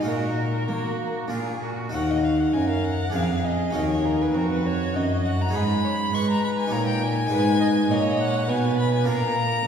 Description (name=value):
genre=classical, baroque-style sonata movement with continuo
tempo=101 BPM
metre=3/4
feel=straight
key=Eb minor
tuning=A4 = 439 Hz
part: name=warm violin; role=melody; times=0.0-9.7 s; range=Bb4 to Db6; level=-28 LUFS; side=left 3 dB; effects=none
part: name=rich violin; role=second line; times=0.0-9.7 s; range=Gb4 to Eb5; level=-30 LUFS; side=right 4 dB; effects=none
part: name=harpsichord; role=accompaniment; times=0.0-9.7 s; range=Eb2 to Db5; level=-25 LUFS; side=equal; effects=none
part: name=dark cello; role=bass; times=0.0-9.7 s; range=Eb2 to Bb3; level=-26 LUFS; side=equal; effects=none
room=wet concert hall reverb, RT60 1.9 s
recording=heard from further back in the room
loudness=-21 LUFS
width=side -7 dB against mid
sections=0.0-1.9 A section; 1.9-9.7 A section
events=none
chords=0.1 Ebm/Bb; 1.3 Bb; 1.9 Ebm; 3.2 Bb7/F; 3.8 Ebm; 5.5 Abm; 6.7 Eb7/Bb; 7.3 Abm; 9.1 Bb